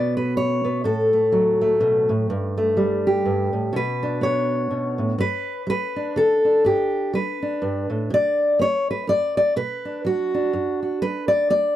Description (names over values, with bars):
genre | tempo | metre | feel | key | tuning
folk, solo fingerstyle acoustic guitar | 124 BPM | 3/4 | swing 58% on 8ths | unclear | A4 = 441 Hz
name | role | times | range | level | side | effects
fingerpicked steel-string acoustic guitar | solo | 0.0-11.8 s | F#2 to D5 | -19 LUFS | equal | none
room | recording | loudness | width
little or no reverb | dry, close 1970s-style studio recording | -19 LUFS | side -12 dB against mid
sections
0.0-5.2 A section; 5.2-11.8 B section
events
none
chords
0.0 N.C.; 0.8 F#m/A; 2.3 Gsus2; 3.7 Bmadd9; 5.2 G; 8.1 Bm; 11.0 G